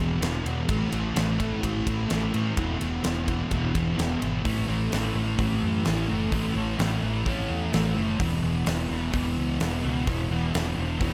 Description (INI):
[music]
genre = rock, shoegaze and dream pop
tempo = 128 BPM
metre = 4/4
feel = straight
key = unclear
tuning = A4 = 440 Hz
[part]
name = fuzz guitar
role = riff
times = 0.0-11.1 s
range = E2 to A3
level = -29 LUFS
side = equal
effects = distortion, analog chorus
[part]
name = vintage muted fingered electric bass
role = bass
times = 0.0-11.1 s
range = E1 to A2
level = -33 LUFS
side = equal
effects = none
[part]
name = huge arena drum kit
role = drums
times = 0.2-11.1 s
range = hi-hat, kick drum, ride cymbal, snare drum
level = -33 LUFS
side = equal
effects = none
[sound]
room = light reverb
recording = none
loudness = -26 LUFS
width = mono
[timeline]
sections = 0.0-4.4 A section; 4.4-11.1 B section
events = none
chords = 0.0 E5; 0.7 A5; 2.6 E5; 4.4 A5; 8.2 E5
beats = 0.22 | 0.69 1.16 1.63 2.10 | 2.57 3.04 3.51 3.98 | 4.45 4.92 5.38 5.85 | 6.32 6.79 7.26 7.73 | 8.20 8.67 9.13 9.60 | 10.07 10.54 11.00